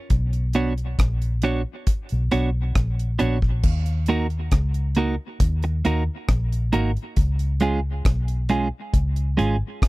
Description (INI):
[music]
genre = roots reggae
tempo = 68 BPM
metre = 4/4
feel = straight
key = unclear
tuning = A4 = 440 Hz
[part]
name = vintage muted fingered electric bass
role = bass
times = 0.1-9.6 s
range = G#1 to D#2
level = -22 LUFS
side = equal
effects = none
[part]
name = deep reggae drum kit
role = drums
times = 0.1-9.9 s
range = crash cymbal, hi-hat, kick drum, rim click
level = -21 LUFS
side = equal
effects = none
[part]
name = clean electric guitar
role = accompaniment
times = 0.6-9.6 s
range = G#3 to C#5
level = -24 LUFS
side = right 3 dB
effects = dub echo
[sound]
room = little or no reverb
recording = dry, close 1970s-style studio recording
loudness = -20 LUFS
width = side -20 dB against mid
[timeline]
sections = 0.0-3.6 A section; 3.6-9.9 B section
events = none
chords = 0.1 Bmadd9; 3.6 D#m; 7.2 C#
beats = | 0.11 0.99 1.88 2.76 | 3.64 4.53 5.41 6.29 | 7.17 8.06 8.94 9.82